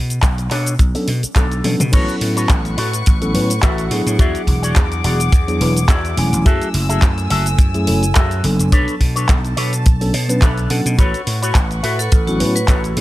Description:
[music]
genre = nu-disco, nu disco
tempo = 106 BPM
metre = 4/4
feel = swing 55% on 16ths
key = A major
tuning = A4 = 441 Hz
[part]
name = vintage slap bass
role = bass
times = 0.0-13.0 s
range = E1 to B2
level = -19 LUFS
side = equal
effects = sidechain pumping
[part]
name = pop drum kit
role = drums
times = 0.1-13.0 s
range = crash cymbal, handclaps, hi-hat, shaker, toms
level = -23 LUFS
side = equal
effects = none
[part]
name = electric guitar with an envelope filter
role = riff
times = 0.2-13.0 s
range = D4 to F#5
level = -24 LUFS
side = left 2 dB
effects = analog chorus, slapback echo
[part]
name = kick drum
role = drums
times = 0.2-12.8 s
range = none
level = -13 LUFS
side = equal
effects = none
[part]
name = mellow tine electric piano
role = accompaniment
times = 0.9-13.0 s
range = F#3 to G#5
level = -22 LUFS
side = equal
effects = sidechain pumping, slapback echo
[part]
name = warm chamber string section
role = sustained chords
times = 1.9-13.0 s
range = A3 to E6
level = -27 LUFS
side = left 1 dB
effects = vintage 12-bit sampler grit, sidechain pumping
[part]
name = vibraphone with hard mallets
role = melody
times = 12.0-12.8 s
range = F#4 to B4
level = -24 LUFS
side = equal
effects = none
[sound]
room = small room ambience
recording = none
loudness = -13 LUFS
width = side -16 dB against mid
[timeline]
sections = 0.0-1.9 A section; 1.9-13.0 B section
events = drum fill 1.6; drop 1.9-13.0; clean electric guitar fill 9.9-11.0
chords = 0.0 Bm9; 1.9 A69; 4.2 E9; 6.5 F#m9; 8.7 Bm9; 11.0 A69

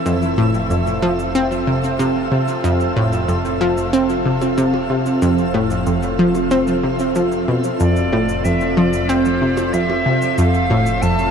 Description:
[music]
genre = ambient, sequencer-driven space music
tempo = 93 BPM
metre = 4/4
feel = straight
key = unclear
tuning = A4 = 445 Hz
[part]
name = sweeping resonant pad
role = sustained chords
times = 0.0-11.3 s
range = C4 to A4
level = -24 LUFS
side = equal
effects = chorus
[part]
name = fat analog bass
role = bass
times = 0.0-11.3 s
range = F1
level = -29 LUFS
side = equal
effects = none
[part]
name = twinkling granular texture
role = texture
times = 0.0-11.3 s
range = E5 to E6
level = -28 LUFS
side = right 1 dB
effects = built-in reverb
[part]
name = analog pluck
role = riff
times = 0.1-11.1 s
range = F2 to C4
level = -16 LUFS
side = equal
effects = chorus, tape echo
[part]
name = shaker and percussion blips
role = percussion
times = 0.1-11.3 s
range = none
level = -33 LUFS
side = right 2 dB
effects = overdrive, tape echo
[part]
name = bright reedy silver concert flute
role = melody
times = 7.8-11.3 s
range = C5 to A5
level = -21 LUFS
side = equal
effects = tape echo
[sound]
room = wet shimmer reverb, RT60 8.3 s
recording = dark, warm production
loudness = -15 LUFS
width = side -7 dB against mid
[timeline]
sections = 0.0-11.3 A section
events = none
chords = 0.1 F

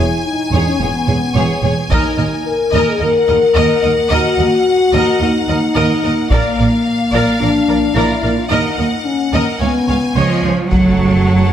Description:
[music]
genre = cinematic, epic orchestral film score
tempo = 109 BPM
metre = 4/4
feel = straight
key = unclear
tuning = A4 = 439 Hz
[part]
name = bright symphonic violin section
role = melody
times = 0.0-11.5 s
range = F5 to A5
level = -23 LUFS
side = left 4 dB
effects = none
[part]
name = rich symphonic violin section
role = second line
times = 0.0-11.5 s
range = Db5 to F#5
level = -23 LUFS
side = left 2 dB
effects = none
[part]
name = clear studio viola section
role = accompaniment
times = 0.0-11.5 s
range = Ab4 to Db5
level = -23 LUFS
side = right 1 dB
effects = none
[part]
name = mellow French horn section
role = sustained chords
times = 0.0-11.5 s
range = Bb3 to C#5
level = -16 LUFS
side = left 3 dB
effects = none
[part]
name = rich symphonic double bass section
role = bass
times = 0.0-11.5 s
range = Fb1 to Eb2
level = -20 LUFS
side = right 3 dB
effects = none
[part]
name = warm symphonic cello section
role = bass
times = 0.0-11.5 s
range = Db2 to F#3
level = -18 LUFS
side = right 3 dB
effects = none
[part]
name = taiko ensemble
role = drums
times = 1.9-3.0, 6.3-7.4, 10.7-11.5 s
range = none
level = -19 LUFS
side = equal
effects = none
[part]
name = mellow trombone section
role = sustained chords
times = 10.7-11.5 s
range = C#3 to A3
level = -22 LUFS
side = right 3 dB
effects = none
[part]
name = impact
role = sound effects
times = 10.7-11.5 s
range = none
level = -24 LUFS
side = equal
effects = none
[sound]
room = moderate concert hall reverb, RT60 2.4 s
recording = none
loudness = -12 LUFS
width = side -10 dB against mid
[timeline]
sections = 0.0-10.7 A section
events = impact 10.7-11.5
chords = 0.0 Dbm7/Fb; 1.9 Ebm; 6.3 Bb; 8.5 Ebm; 9.6 Db7; 10.7 F#m

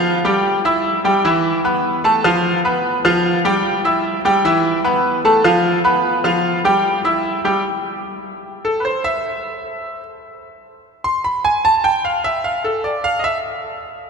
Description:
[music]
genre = latin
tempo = 150 BPM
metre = 4/4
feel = straight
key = unclear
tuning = A4 = 440 Hz
[part]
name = bright concert grand piano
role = solo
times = 0.0-13.4 s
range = E3 to E6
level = -15 LUFS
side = equal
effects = none
[sound]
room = wet cathedral reverb, RT60 4.4 s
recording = recorded in a church or concert hall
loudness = -15 LUFS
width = side -5 dB against mid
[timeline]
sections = 0.0-7.6 A section; 7.6-14.1 B section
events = grand piano solo 7.6-14.1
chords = 0.4 Em; 2.0 F; 2.8 G7; 3.6 Em; 5.2 F; 6.0 G7; 6.8 Em/G; 7.6 N.C.

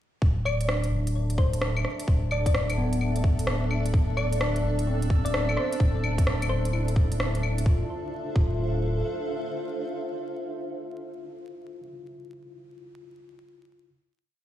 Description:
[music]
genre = future garage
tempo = 129 BPM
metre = 4/4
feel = swing 64% on 16ths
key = D dorian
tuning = A4 = 441 Hz
[part]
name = granular cloud pad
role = sustained chords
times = 1.0-11.1 s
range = D4 to A5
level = -34 LUFS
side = equal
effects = built-in reverb, sidechain pumping
[part]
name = warm sub bass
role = bass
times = 0.2-9.0 s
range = D1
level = -27 LUFS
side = equal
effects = sidechain pumping
[part]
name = electronic kick drum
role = drums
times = 0.2-8.5 s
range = none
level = -22 LUFS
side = equal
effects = none
[part]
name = thumb-piano-like synth pluck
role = melody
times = 0.5-7.0 s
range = C5 to D5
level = -34 LUFS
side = left 2 dB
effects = chorus, phaser, ping-pong delay
[part]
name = organic electronic drum kit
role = drums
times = 0.5-7.6 s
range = claves, hi-hat, rim click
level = -31 LUFS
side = equal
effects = none
[part]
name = tine electric piano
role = accompaniment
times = 0.7-13.9 s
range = B3 to F4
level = -36 LUFS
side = equal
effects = medium stereo tremolo, sidechain pumping, tape echo
[part]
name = drifting glass-harmonics texture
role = texture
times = 4.4-7.7 s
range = A4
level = -42 LUFS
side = right 2 dB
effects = chorus, built-in reverb
[sound]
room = light reverb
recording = played on a big sound system in a bare room, stone room reverb, vinyl crackle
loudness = -24 LUFS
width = side -12 dB against mid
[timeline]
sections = 0.2-7.7 groove; 7.7-11.4 final chord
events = none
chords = 0.2 D5; 7.7 Dm7

